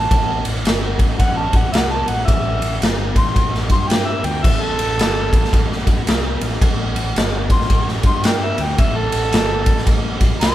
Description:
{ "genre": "blues rock power trio and southern rock", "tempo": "111 BPM", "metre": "4/4", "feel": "swing 63% on 8ths", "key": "unclear", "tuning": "A4 = 443 Hz", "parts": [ { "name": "overdriven harmonica", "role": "melody", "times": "0.0-10.5 s", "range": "A4 to C6", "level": "-22 LUFS", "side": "right 1 dB", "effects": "none" }, { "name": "fuzz fingered electric bass", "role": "bass", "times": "0.0-10.5 s", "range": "G1 to G2", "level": "-23 LUFS", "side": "equal", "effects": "overdrive" }, { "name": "raw garage drum kit", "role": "drums", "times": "0.1-10.5 s", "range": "crash cymbal, kick drum, ride cymbal, snare drum", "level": "-16 LUFS", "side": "equal", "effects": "none" } ], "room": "light reverb", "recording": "band playing live in one room", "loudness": "-15 LUFS", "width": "side -13 dB against mid", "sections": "0.0-10.5 A section", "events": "harmonica solo 0.0-10.5", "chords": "0.0 A5", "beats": "| 0.11 0.66 1.20 1.74 | 2.28 2.83 3.37 3.91 | 4.45 4.99 5.53 6.08 | 6.62 7.16 7.70 8.24 | 8.79 9.33 9.87 10.41" }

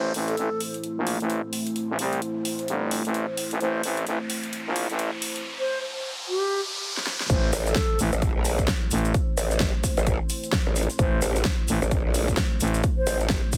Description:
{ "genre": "bass house", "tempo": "130 BPM", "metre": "4/4", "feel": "swing 60% on 16ths", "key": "A phrygian", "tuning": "A4 = 442 Hz", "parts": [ { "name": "mellow hollow silver concert flute", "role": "melody", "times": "0.0-0.6, 3.6-8.0, 11.0-13.2 s", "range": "G4 to C5", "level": "-32 LUFS", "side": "equal", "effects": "dub echo" }, { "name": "dark analog pad", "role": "sustained chords", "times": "0.0-13.6 s", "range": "A3 to C5", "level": "-36 LUFS", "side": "equal", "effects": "chorus, sidechain pumping" }, { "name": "growling FM bass", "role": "bass", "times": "0.0-12.8 s", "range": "G1 to C2", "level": "-28 LUFS", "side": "equal", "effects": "overdrive, sidechain pumping, high-pass filter" }, { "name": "riser", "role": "sound effects", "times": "0.0-7.3 s", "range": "none", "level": "-37 LUFS", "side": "equal", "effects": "none" }, { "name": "big-room dance drum kit", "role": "drums", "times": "0.1-13.6 s", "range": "hi-hat, snare drum", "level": "-33 LUFS", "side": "equal", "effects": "none" }, { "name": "electronic kick drum", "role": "drums", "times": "7.3-13.6 s", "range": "none", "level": "-27 LUFS", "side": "equal", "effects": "none" }, { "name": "tube shaker", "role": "percussion", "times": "7.3-13.6 s", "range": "none", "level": "-38 LUFS", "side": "equal", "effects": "none" }, { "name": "growl bass", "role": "bass", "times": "7.5-13.4 s", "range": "A1 to Bb1", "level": "-27 LUFS", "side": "equal", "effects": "chorus, tube saturation, sidechain pumping" } ], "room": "light reverb, digital ambience", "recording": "heavily compressed radio sound, high-pass filter", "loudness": "-26 LUFS", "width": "mono", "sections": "0.0-7.3 A section; 7.3-13.6 B section", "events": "build-up 0.0-7.3; riser 0.0-7.3; filter sweep 0.0-7.3; drum fill 7.0-7.3; drop 7.3-13.6", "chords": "0.0 Am", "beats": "0.38 0.84 1.30 | 1.76 2.22 2.68 3.14 | 3.61 4.07 4.53 4.99 | 5.45 5.91 6.38 6.84 | 7.30 7.76 8.22 8.68 | 9.14 9.61 10.07 10.53 | 10.99 11.45 11.91 12.38 | 12.84 13.30" }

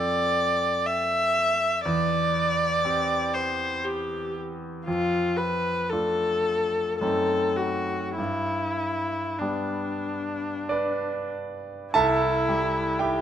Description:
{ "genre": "classical, romantic duo for viola and grand piano", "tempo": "45-63 BPM", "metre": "3/4", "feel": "rubato", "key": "C major", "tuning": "A4 = 440 Hz", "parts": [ { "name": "rich viola", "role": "melody", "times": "0.0-13.2 s", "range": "D4 to E5", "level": "-25 LUFS", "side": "left 1 dB", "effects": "none" }, { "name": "bright concert grand piano", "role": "accompaniment", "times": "0.0-13.2 s", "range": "C2 to A5", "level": "-28 LUFS", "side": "right 2 dB", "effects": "none" } ], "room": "moderate recital hall reverb, RT60 1.4 s", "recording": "close, detailed microphones", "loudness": "-23 LUFS", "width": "side -9 dB against mid", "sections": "0.0-11.9 A section; 11.9-13.2 B section", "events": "none", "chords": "0.0 F; 1.9 C/E; 4.9 Dm/F; 7.0 F#dim7; 8.2 G; 11.9 C", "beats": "0.87 | 1.86 2.85 3.85 | 4.87 5.92 7.02 | 8.18 9.40 10.70 | 11.94 12.99" }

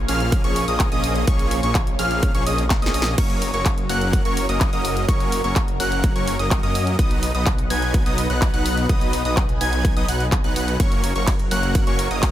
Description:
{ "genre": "EDM, festival progressive house", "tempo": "126 BPM", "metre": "4/4", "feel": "straight", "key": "F# major", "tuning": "A4 = 439 Hz", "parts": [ { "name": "lush unison pad", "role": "sustained chords", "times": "0.0-12.3 s", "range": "F#3 to G#5", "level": "-30 LUFS", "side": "equal", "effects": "chorus, phaser, sidechain pumping" }, { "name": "detuned saw bass", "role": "bass", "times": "0.0-12.3 s", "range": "F#1 to F#2", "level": "-25 LUFS", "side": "equal", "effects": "sidechain pumping" }, { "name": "plucky unison lead", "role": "arpeggios", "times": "0.1-12.3 s", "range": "C#6 to G#6", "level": "-27 LUFS", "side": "equal", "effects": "cassette tape, sidechain pumping, ping-pong delay" }, { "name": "supersaw chords", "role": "riff", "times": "0.1-12.3 s", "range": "E#3 to G#5", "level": "-25 LUFS", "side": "equal", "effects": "sidechain pumping, ping-pong delay" }, { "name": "big-room dance drum kit", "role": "drums", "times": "0.1-12.3 s", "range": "crash cymbal, handclaps, hi-hat, ride cymbal, snare drum", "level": "-28 LUFS", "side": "equal", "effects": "none" }, { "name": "electronic kick drum", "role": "drums", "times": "0.3-12.3 s", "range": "none", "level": "-20 LUFS", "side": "equal", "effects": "none" } ], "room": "digital ambience", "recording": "none", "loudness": "-18 LUFS", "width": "side -12 dB against mid", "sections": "0.0-12.3 A section", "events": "drum fill 2.7-3.2", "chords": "0.0 A#m7; 3.2 F#; 7.0 B; 10.8 F#", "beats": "0.32 0.80 | 1.28 1.75 2.23 2.71 | 3.18 3.66 4.13 4.61 | 5.09 5.56 6.04 6.51 | 6.99 7.47 7.94 8.42 | 8.89 9.37 9.85 10.32 | 10.80 11.28 11.75 12.23" }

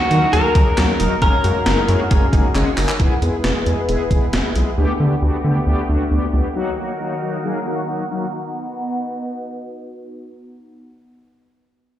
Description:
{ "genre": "synth-pop", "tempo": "135 BPM", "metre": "4/4", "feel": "straight", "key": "B major", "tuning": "A4 = 440 Hz", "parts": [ { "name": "direct-recorded clean electric guitar", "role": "melody", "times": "0.0-2.5 s", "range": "F#4 to A#4", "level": "-20 LUFS", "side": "left 1 dB", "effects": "lush chorus, ping-pong delay" }, { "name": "mellow synth brass", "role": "accompaniment", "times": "0.0-8.3 s", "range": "F#3 to A#4", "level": "-22 LUFS", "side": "left 2 dB", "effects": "chorus, low-pass filter" }, { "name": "phased analog pad", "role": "sustained chords", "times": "0.0-10.1 s", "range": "D#3 to B4", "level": "-27 LUFS", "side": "equal", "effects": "phaser, chorus, low-pass filter" }, { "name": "wide unison pluck", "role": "arpeggios", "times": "0.0-3.0 s", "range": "C#4 to G#4", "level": "-27 LUFS", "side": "right 1 dB", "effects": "ping-pong delay" }, { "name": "round analog bass", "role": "bass", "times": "0.1-6.4 s", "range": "E1 to D#3", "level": "-18 LUFS", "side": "equal", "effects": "none" }, { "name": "gated 80s digital drum machine", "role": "drums", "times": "0.1-4.7 s", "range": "handclaps, hi-hat, kick drum, snare drum", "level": "-18 LUFS", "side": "equal", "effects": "gated reverb, gated reverb snare" } ], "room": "light reverb, digital ambience", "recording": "played on a big sound system in a bare room, stone room reverb", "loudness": "-16 LUFS", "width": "side -12 dB against mid", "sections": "0.0-3.0 A section; 3.0-10.1 B section", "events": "drum fill 2.6-3.0; filter sweep 3.0-10.1", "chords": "0.0 D#m; 1.2 F#add9; 3.0 E; 4.8 Gadd9/D; 6.6 D#m; 8.3 B", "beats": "0.33 0.78 | 1.22 1.66 2.11 2.55 | 3.00 3.44 3.89 4.33 | 4.78 5.22 5.66 6.11 | 6.55 7.00 7.44 7.89 | 8.33 8.78 9.22 9.66" }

